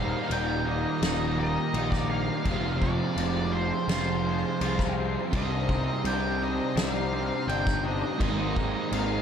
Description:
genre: rock, shoegaze and dream pop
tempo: 84 BPM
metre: 4/4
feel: straight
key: Eb major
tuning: A4 = 440 Hz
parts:
  - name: octave-fuzz lead guitar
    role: melody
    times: 0.0-9.2 s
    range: C5 to G5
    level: -34 LUFS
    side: right 2 dB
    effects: distortion, diffuse ambient delay
  - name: shimmering ambient pad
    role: sustained chords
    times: 0.0-9.2 s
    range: G4 to C6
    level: -38 LUFS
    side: equal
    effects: chorus, built-in reverb
  - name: twangy electric guitar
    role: arpeggios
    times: 0.0-9.2 s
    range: Eb2 to F4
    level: -40 LUFS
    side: right 7 dB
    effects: ensemble chorus, diffuse ambient delay
  - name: overdriven semi-hollow guitar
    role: riff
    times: 0.0-9.2 s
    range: Eb2 to F4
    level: -32 LUFS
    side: left 9 dB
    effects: ensemble chorus
  - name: overdriven semi-hollow guitar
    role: riff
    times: 0.0-9.2 s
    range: Eb2 to F4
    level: -31 LUFS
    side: right 8 dB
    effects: reverse reverb
  - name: fuzz picked electric bass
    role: bass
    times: 0.0-9.2 s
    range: Eb1 to C2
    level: -31 LUFS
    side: left 1 dB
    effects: overdrive
  - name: loose indie drum kit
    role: drums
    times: 0.3-9.1 s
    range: crash cymbal, kick drum, snare drum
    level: -32 LUFS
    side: left 1 dB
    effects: none
room: moderate plate reverb, RT60 2.8 s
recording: dreamy mix soaked in reverb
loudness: -25 LUFS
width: side -8 dB against mid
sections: 0.0-9.2 A section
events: none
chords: 0.0 Ebadd9; 2.5 Fm; 5.3 Cmadd9; 8.2 Abadd9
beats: 0.31 1.02 1.74 | 2.46 3.18 3.90 4.61 | 5.33 6.05 6.76 7.48 | 8.20 8.91

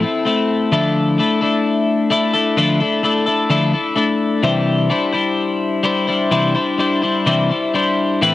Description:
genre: pop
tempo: 64 BPM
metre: 4/4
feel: straight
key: unclear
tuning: A4 = 438 Hz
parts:
  - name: twelve-string electric guitar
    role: solo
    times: 0.0-8.3 s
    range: A2 to C5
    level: -14 LUFS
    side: left 2 dB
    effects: wide subtle chorus, cassette tape
room: moderate spring reverb, RT60 3.0 s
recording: home recording on cassette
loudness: -14 LUFS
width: side -15 dB against mid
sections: 0.0-8.2 A section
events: none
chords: 0.0 Fmaj7/A (rootless); 0.7 Dmadd9; 4.4 Cadd9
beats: | 0.73 1.65 2.58 3.51 | 4.43 5.37 6.31 7.26 | 8.22

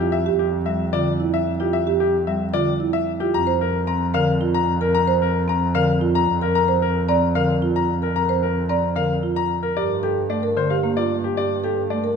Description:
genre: classical, minimalist pattern music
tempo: 112 BPM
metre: 3/4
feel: straight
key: unclear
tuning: A4 = 440 Hz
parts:
  - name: bright baby grand piano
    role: melody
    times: 0.0-12.1 s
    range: G4 to Bb5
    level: -23 LUFS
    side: left 11 dB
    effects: none
  - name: marimba with soft mallets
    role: arpeggios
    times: 0.0-12.2 s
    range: E4 to D5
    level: -23 LUFS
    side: right 6 dB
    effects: none
  - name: clear double bass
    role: bass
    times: 0.0-12.2 s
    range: F2 to G2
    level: -25 LUFS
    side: right 2 dB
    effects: none
  - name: marimba with medium hard mallets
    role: accompaniment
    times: 0.7-12.1 s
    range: D3 to C4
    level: -27 LUFS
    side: left 1 dB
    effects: none
room: wet recital hall reverb, RT60 1.7 s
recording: minimal, uncompressed stereo recording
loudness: -18 LUFS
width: side -6 dB against mid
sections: 0.0-9.8 A section; 9.8-12.2 B section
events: none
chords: 0.0 Fsus2; 3.3 Bb/F; 9.8 Gmadd9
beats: | 0.12 0.66 1.19 | 1.73 2.27 2.80 | 3.34 3.87 4.41 | 4.94 5.48 6.01 | 6.55 7.09 7.62 | 8.16 8.69 9.23 | 9.77 10.30 10.84 | 11.37 11.91

